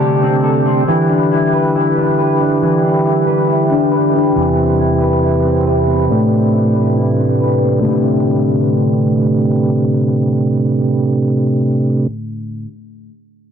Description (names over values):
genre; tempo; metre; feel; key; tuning
dream pop; 69 BPM; 4/4; straight; A minor; A4 = 440 Hz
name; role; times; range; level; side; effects
mellow tonewheel organ; sustained chords; 0.0-12.1 s; E2 to B4; -14 LUFS; right 2 dB; overdrive, chorus vibrato, slow rotary speaker, low-pass filter
electric guitar at the edge of break-up; arpeggios; 0.0-12.8 s; A2 to B4; -16 LUFS; left 2 dB; lush chorus, low-pass filter, ping-pong delay
room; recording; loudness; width
wet booth ambience, RT60 0.3 s; dense, heavily limited modern master; -12 LUFS; side -8 dB against mid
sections
0.0-7.8 A section; 7.8-11.3 B section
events
filter sweep 0.0-7.8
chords
0.0 D7sus4; 0.9 Em7; 4.4 Cmaj7/E; 6.1 Am11